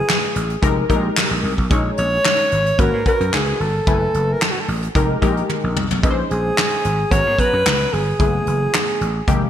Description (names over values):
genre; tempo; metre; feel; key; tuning
early-eighties boogie funk; 111 BPM; 4/4; straight; unclear; A4 = 440 Hz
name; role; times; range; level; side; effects
breathy alto saxophone; melody; 0.0-9.5 s; Gb4 to Db5; -20 LUFS; right 1 dB; none
funky polysynth comp; accompaniment; 0.0-9.5 s; Eb3 to Bb5; -24 LUFS; left 4 dB; chorus
soft brush drum kit; drums; 0.1-9.4 s; handclaps, hi-hat, kick drum, snare drum, toms; -20 LUFS; equal; gated reverb
vintage slap bass; bass; 0.4-9.5 s; F1 to Ab2; -21 LUFS; equal; none
room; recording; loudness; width
moderate lush hall reverb, RT60 1.9 s, studio reverb; bright 1980s-style digital production; -16 LUFS; side -10 dB against mid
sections
0.0-9.5 A section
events
drum fill 5.5-6.0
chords
0.0 Gbm11 (rootless); 0.6 Fm11; 1.7 Bbm7; 2.8 Abm11; 3.9 Gbm11; 5.0 Fm11; 6.0 Bbm11; 7.1 Abm11; 8.2 Gbm11